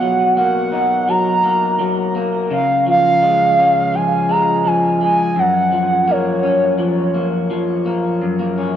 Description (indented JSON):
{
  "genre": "dream pop",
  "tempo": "84 BPM",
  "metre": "4/4",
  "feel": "straight",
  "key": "F# major",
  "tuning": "A4 = 439 Hz",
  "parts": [
    { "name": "hollow clarinet-like synth lead", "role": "melody", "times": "0.0-7.2 s", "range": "C#5 to A#5", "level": "-16 LUFS", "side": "right 1 dB", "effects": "chorus, shimmer reverb, tape echo" },
    { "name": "electric guitar through a small old amp", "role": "arpeggios", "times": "0.0-8.8 s", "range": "F#2 to D#4", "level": "-18 LUFS", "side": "left 2 dB", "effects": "wide subtle chorus, cassette tape, shimmer reverb, tape echo" }
  ],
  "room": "moderate spring reverb, RT60 1.8 s, digital ambience",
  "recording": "home recording on cassette",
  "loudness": "-14 LUFS",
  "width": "side -10 dB against mid",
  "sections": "0.0-8.2 A section",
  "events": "none",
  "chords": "0.0 Bmaj7; 2.5 C#; 5.4 F#maj7"
}